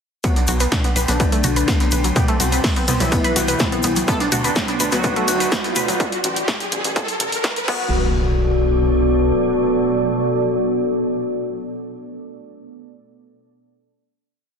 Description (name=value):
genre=melodic techno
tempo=125 BPM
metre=4/4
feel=straight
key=B phrygian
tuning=A4 = 440 Hz
part: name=resonant sweep polysynth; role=melody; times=0.2-11.6 s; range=D3 to A4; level=-23 LUFS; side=left 4 dB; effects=chorus, sidechain pumping, ping-pong delay
part: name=deep dark ambient pad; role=sustained chords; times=1.5-11.6 s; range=B3 to C6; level=-25 LUFS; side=right 4 dB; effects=chorus, built-in reverb, sidechain pumping
part: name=wide unison pluck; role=arpeggios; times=0.2-8.1 s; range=F#3 to B4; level=-23 LUFS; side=equal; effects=sidechain pumping, ping-pong delay
part: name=swarming drone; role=drone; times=2.1-11.6 s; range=B2 to F#3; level=-32 LUFS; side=left 2 dB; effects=built-in reverb, sidechain pumping
part: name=electronic kick drum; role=drums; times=0.2-7.8 s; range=none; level=-21 LUFS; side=equal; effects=overdrive, studio reverb
part: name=jazz brush drum kit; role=drums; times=0.2-5.9 s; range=hi-hat, ride cymbal, snare drum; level=-30 LUFS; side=equal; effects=sidechain pumping on cymbals, high-pass filter on cymbals, studio reverb, sidechain pumping on hats, high-pass filter on hats, high-pass filter on snare, high-pass filter on room
part: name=techno drum kit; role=drums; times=0.2-7.8 s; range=crash cymbal, hi-hat, snare drum, toms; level=-24 LUFS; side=equal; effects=overdrive, studio reverb
part: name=egg shaker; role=percussion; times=0.2-6.0 s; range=none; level=-27 LUFS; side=left 5 dB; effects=none
part: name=riser and impact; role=sound effects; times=2.6-11.6 s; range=none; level=-28 LUFS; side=equal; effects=none
part: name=tight sequencer bass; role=bass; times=0.5-9.3 s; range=A1 to D2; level=-23 LUFS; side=equal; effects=sidechain pumping
room=moderate lush hall reverb, RT60 1.8 s, studio ambience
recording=dense, heavily limited modern master, high-pass filter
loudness=-16 LUFS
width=side -6 dB against mid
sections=0.2-7.9 build; 7.9-11.8 final hit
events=build-up 0.2-7.9; filter sweep 0.2-7.9; riser 2.6-7.9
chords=0.2 Bm7; 2.2 C; 4.1 D7; 6.0 F#madd11/A; 7.7 Bm7